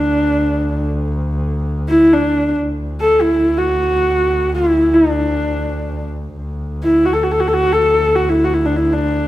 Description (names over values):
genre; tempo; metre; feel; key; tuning
mongolian traditional, Mongolian folk; free time; none; none; D gong mode; A4 = 440 Hz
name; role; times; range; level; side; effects
dark horsehead fiddle; melody; 0.0-9.3 s; D4 to A4; -14 LUFS; equal; none
rich double bass; drone; 0.0-9.3 s; D2; -21 LUFS; equal; none
room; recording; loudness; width
wet recital hall reverb, RT60 1.3 s; none; -13 LUFS; side -15 dB against mid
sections
0.0-2.6 A section; 2.6-9.3 A section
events
none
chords
none